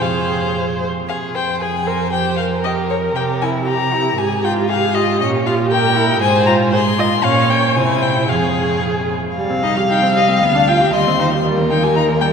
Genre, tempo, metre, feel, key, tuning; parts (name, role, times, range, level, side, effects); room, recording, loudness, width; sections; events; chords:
quick classical-period movement for string quartet; 116 BPM; 2/4; straight; F minor; A4 = 440 Hz
rich violin; melody; 0.0-12.3 s; Db5 to C6; -20 LUFS; left 6 dB
dark violin; second line; 0.0-12.3 s; Db4 to F5; -20 LUFS; left 2 dB
warm viola; accompaniment; 0.0-12.3 s; G3 to Eb5; -20 LUFS; right 2 dB
rich cello; bass; 0.0-12.3 s; C2 to C3; -20 LUFS; right 4 dB
wet cathedral reverb, RT60 6.6 s; recorded in a church or concert hall; -14 LUFS; side -6 dB against mid
0.0-1.1 A section; 1.1-9.4 A section; 9.4-12.3 B section
0.0 Fm; 2.1 Eb69/F (rootless); 3.2 C; 4.2 Fm/Ab; 5.2 Bbm; 5.7 Edim/Bb; 6.2 Fm/Ab; 7.2 Gdim/Bb; 7.8 C; 8.3 Fm; 9.4 Cm; 10.4 G7/D; 10.9 Cm/Eb; 11.4 Eb